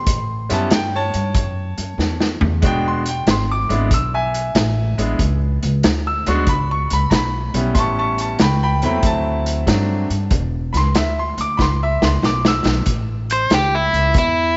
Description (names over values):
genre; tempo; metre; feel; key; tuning
electric blues shuffle; 94 BPM; 4/4; swing 68% on 8ths; A mixolydian; A4 = 440 Hz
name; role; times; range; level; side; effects
bright grand piano; accompaniment; 0.0-12.9 s; F#3 to E6; -23 LUFS; equal; none
upright bass; bass; 0.0-14.6 s; E1 to G2; -23 LUFS; equal; none
vintage drum kit; drums; 0.1-14.4 s; hi-hat, kick drum, snare drum, toms; -22 LUFS; equal; none
overdriven electric guitar; melody; 13.3-14.6 s; E4 to C5; -18 LUFS; equal; none
room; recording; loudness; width
moderate echo chamber reverb, RT60 2.3 s; nothing above 7.8 kHz; -18 LUFS; mono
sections
0.0-12.9 A section; 12.9-14.6 B section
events
drum fill 2.0-2.6, 11.6-12.9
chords
0.1 A7; 2.6 E7; 7.8 A7; 9.0 D7; 10.3 E5; 12.9 A